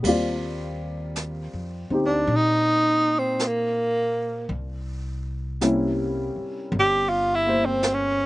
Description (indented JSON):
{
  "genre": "jazz ballad",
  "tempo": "54 BPM",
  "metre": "4/4",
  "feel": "swing 68% on 8ths",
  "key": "Eb major",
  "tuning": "A4 = 441 Hz",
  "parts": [
    { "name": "dark upright piano", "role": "accompaniment", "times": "0.0-8.3 s", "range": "C3 to D5", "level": "-26 LUFS", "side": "left 1 dB", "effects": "none" },
    { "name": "upright bass", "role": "bass", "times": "0.0-8.3 s", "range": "G1 to Bb2", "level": "-30 LUFS", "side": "equal", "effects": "none" },
    { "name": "jazz brush drum kit", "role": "drums", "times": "0.0-8.3 s", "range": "brushed snare drum, crash cymbal, hi-hat, kick drum, snare drum", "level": "-31 LUFS", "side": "right 2 dB", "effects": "none" },
    { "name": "breathy tenor saxophone", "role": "melody", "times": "2.1-8.3 s", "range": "Bb3 to G4", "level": "-20 LUFS", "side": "right 1 dB", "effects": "none" }
  ],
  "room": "little or no reverb",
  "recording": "recorded outdoors, with no room sound, nothing above 10.3 kHz",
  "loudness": "-21 LUFS",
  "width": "side -18 dB against mid",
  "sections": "0.0-8.3 A section",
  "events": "tenor saxophone solo 0.0-8.3",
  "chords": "0.0 Ebmaj13; 4.5 C7b9",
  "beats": "| 0.04 1.16 2.27 3.39 | 4.50 5.61 6.72 7.83"
}